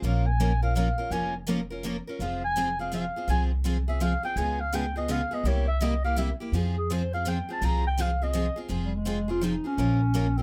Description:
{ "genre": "acoustic string swing (jazz manouche)", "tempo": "166 BPM", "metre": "3/4", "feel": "swing 63% on 8ths", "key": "F minor", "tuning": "A4 = 440 Hz", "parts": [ { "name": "breathy clarinet", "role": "melody", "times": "0.0-10.4 s", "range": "G3 to Bb5", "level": "-32 LUFS", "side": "equal", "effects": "none" }, { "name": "picked steel-string acoustic guitar", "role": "accompaniment", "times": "0.0-10.4 s", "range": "C3 to Bb4", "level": "-35 LUFS", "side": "equal", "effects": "none" }, { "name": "picked steel-string acoustic guitar", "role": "accompaniment", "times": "0.0-10.3 s", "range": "C3 to Bb4", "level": "-38 LUFS", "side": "equal", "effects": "none" }, { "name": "upright bass", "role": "bass", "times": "0.0-10.4 s", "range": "F1 to F2", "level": "-30 LUFS", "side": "equal", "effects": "none" } ], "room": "light reverb", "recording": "close, detailed microphones", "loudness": "-27 LUFS", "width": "mono", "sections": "0.0-8.7 A section; 8.7-10.4 B section", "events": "clarinet solo 0.0-8.7", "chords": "0.0 Bbm; 2.2 Fm; 4.4 Db7; 5.5 C7; 6.5 Fm; 9.8 Bbm" }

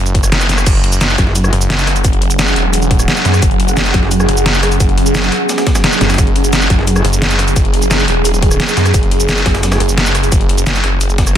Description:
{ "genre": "dark technical drum and bass", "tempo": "174 BPM", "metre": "4/4", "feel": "straight", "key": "unclear", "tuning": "A4 = 440 Hz", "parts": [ { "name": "snarling distorted saw bass", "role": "bass", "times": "0.0-11.3 s", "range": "E1 to F#2", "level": "-15 LUFS", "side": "equal", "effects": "distortion, tube saturation" }, { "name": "breakbeat sampler-style drum kit", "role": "drums", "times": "0.1-11.4 s", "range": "hi-hat, snare drum", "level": "-24 LUFS", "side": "equal", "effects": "none" }, { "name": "dubstep drum kit", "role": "drums", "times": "0.1-11.3 s", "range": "cabasa, crash cymbal, hi-hat, rim click, snare drum", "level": "-15 LUFS", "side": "equal", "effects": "none" }, { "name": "electronic kick drum", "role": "drums", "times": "0.1-11.3 s", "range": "none", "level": "-14 LUFS", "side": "equal", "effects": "none" }, { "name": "swarming drone", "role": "sustained chords", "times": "1.6-11.4 s", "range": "F#3 to F#5", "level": "-18 LUFS", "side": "right 2 dB", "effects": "built-in reverb, sidechain pumping" }, { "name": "metallic wobble bass", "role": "bass", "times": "1.2-1.5, 3.9-7.0, 9.5-9.8 s", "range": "F#1", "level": "-14 LUFS", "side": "equal", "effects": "chorus" } ], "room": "little or no reverb", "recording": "dense, heavily limited modern master", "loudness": "-10 LUFS", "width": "side -10 dB against mid", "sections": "0.0-11.4 A section", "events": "none", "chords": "0.0 F#5" }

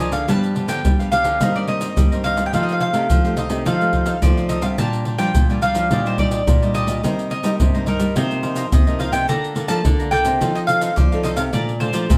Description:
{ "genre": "samba and choro", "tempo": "107 BPM", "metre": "4/4", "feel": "straight", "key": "Bb major", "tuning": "A4 = 440 Hz", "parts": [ { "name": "mandolin", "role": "melody", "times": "0.0-12.2 s", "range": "Bb4 to Bb5", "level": "-25 LUFS", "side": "equal", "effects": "none" }, { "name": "cavaquinho", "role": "accompaniment", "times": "0.0-12.0 s", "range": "D4 to Bb5", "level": "-32 LUFS", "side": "equal", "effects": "none" }, { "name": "nylon-string guitar", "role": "accompaniment", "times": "0.0-12.2 s", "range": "F2 to A4", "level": "-28 LUFS", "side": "equal", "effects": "none" }, { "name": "nylon-string guitar", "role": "bass", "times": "0.0-12.2 s", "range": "Bb2 to G3", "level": "-26 LUFS", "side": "equal", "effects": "none" }, { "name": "maracas, pandeiro and surdo", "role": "percussion", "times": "0.1-12.2 s", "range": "none", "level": "-22 LUFS", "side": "equal", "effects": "none" } ], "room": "moderate studio reverb, RT60 0.7 s", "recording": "band playing live in one room", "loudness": "-19 LUFS", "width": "mono", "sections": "0.0-12.2 A section", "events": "none", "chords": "0.3 G7; 1.4 Cm7/G; 2.5 F9; 4.8 Bb6; 5.9 Ebmaj7/Bb; 7.0 Cm7; 8.2 F7sus4/C; 9.3 Bbmaj7/D; 10.4 F7; 11.5 Bbmaj7" }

